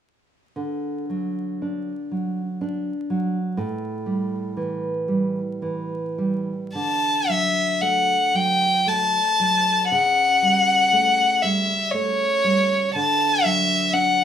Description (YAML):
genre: romantic duo for violin and classical guitar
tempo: 58 BPM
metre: 3/4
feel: uneven beats, rubato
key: D major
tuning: A4 = 437 Hz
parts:
  - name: nylon-string guitar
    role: accompaniment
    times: 0.6-14.2 s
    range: A2 to D4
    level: -25 LUFS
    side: right 2 dB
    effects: none
  - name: rich violin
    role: melody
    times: 6.7-14.2 s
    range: C#5 to A5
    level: -18 LUFS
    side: left 2 dB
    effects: none
room: wet studio reverb, RT60 0.5 s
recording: rough home demo mix, vinyl crackle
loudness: -19 LUFS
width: side -9 dB against mid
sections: 0.6-6.7 A section; 6.7-14.2 B section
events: none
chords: 0.6 D; 3.6 A5; 6.7 D; 9.9 A7/C#; 12.9 D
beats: | 0.56 1.61 2.60 | 3.57 4.56 5.62 | 6.75 7.82 8.87 | 9.90 10.92 11.92 | 12.94 13.92